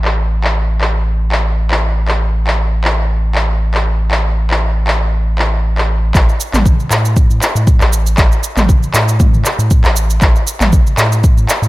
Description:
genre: afro house.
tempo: 118 BPM.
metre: 4/4.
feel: swing 55% on 16ths.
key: unclear.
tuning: A4 = 438 Hz.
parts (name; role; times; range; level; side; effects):
round analog bass; bass; 0.0-11.7 s; A1 to A2; -14 LUFS; equal; sidechain pumping.
deep house drum kit; drums; 0.0-11.7 s; cabasa, handclaps, toms; -16 LUFS; equal; low-pass filter on snare, low-pass filter on perc, low-pass filter on toms, low-pass filter on cymbals, low-pass filter on room.
electronic kick drum; drums; 6.1-11.3 s; none; -11 LUFS; equal; none.
room: little or no reverb.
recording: dry, gritty hardware recording.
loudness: -11 LUFS.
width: side -18 dB against mid.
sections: 0.0-6.1 A section; 6.1-11.7 B section.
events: drop 6.1-11.7.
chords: none.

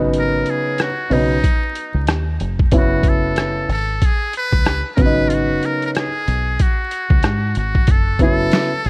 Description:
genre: hip hop, jazz-hop.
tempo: 93 BPM.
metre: 4/4.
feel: swing 59% on 16ths.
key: unclear.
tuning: A4 = 441 Hz.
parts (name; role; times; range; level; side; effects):
dark concert grand piano; accompaniment; 0.0-8.7 s; C#3 to E4; -18 LUFS; equal; none.
deep dub fingered electric bass; bass; 0.0-8.9 s; E#1 to G#2; -21 LUFS; equal; none.
boom bap sampler-style drum kit; drums; 0.1-8.9 s; hi-hat, kick drum, rim click, snare drum; -17 LUFS; equal; none.
trumpet with metal mute; melody; 0.2-8.9 s; D#4 to B4; -22 LUFS; equal; tape echo.
room: light reverb.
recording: worn, warbling old tape, cassette tape, vinyl crackle, warbly pitch drift.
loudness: -15 LUFS.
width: side -30 dB against mid.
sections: 0.0-7.9 A section; 7.9-8.9 B section.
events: none.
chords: 0.0 G#m7; 2.7 F#m9; 5.0 G#m7; 7.9 F#m7.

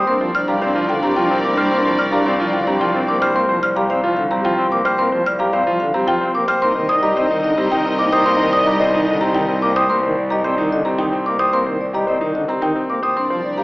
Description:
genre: classical, minimalist pattern music.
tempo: 110 BPM.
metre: 3/4.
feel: straight.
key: C minor.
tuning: A4 = 439 Hz.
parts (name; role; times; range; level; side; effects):
marimba with soft mallets; melody; 0.0-13.6 s; G4 to G5; -22 LUFS; left 1 dB; none.
pipe organ, cornet; accompaniment; 0.0-13.6 s; D3 to C4; -24 LUFS; equal; none.
clear grand piano; arpeggios; 0.0-13.6 s; C4 to C5; -22 LUFS; equal; none.
xylophone with rubber mallets; arpeggios; 0.0-13.6 s; Eb5 to F6; -20 LUFS; equal; none.
mellow hollow alto flute; second line; 0.1-3.1, 6.6-9.7, 13.2-13.6 s; D4 to Eb4; -25 LUFS; right 1 dB; none.
warm symphonic violin section; sustained chords; 0.1-3.2, 6.6-9.7, 13.2-13.6 s; Bb4 to Eb5; -25 LUFS; left 1 dB; none.
warm cello; bass; 0.1-13.6 s; C2; -24 LUFS; equal; none.
room: wet scoring stage reverb, RT60 1.7 s.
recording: AM radio sound.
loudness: -15 LUFS.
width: side -22 dB against mid.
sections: 0.0-13.6 A section.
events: none.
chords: 0.1 Bb6/C; 6.6 Cm7.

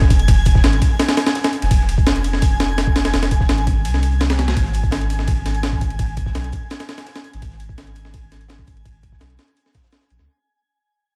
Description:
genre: drum and bass, jungle.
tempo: 168 BPM.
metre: 4/4.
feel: straight.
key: F minor.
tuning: A4 = 442 Hz.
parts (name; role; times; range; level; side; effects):
soft dub sub bass; bass; 0.0-10.3 s; F1 to Db2; -22 LUFS; equal; none.
breakbeat sampler-style drum kit; drums; 0.0-10.3 s; kick drum, ride cymbal, snare drum; -20 LUFS; equal; none.
twinkling granular texture; texture; 0.0-10.3 s; Ab5 to Ab6; -32 LUFS; equal; built-in reverb.
crunchy breakbeat drum kit; drums; 0.1-10.3 s; hi-hat, snare drum; -40 LUFS; equal; none.
room: little or no reverb.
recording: vinyl crackle.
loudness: -18 LUFS.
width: mono.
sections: 0.0-10.3 A section.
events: fade-out 0.0-10.3.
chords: 0.0 Fm; 4.6 N.C..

